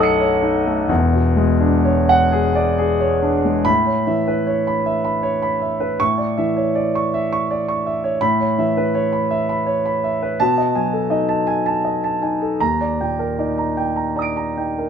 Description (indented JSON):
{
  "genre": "classical, impressionist solo piano",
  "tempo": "42-57 BPM (dotted quarters)",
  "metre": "6/8",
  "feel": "rubato",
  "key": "A lydian",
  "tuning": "A4 = 440 Hz",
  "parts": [
    { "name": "warm concert grand piano", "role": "solo", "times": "0.0-14.9 s", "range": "E1 to D7", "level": "-16 LUFS", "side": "equal", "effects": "none" }
  ],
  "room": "little or no reverb",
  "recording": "close, detailed microphones",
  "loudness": "-16 LUFS",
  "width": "side -7 dB against mid",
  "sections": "0.0-3.7 A section; 3.7-14.9 B section",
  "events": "none",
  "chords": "0.0 B9; 0.9 E13; 3.7 Aadd9; 6.0 Aadd11; 8.2 Aadd9; 10.4 B6; 12.6 D#maj7"
}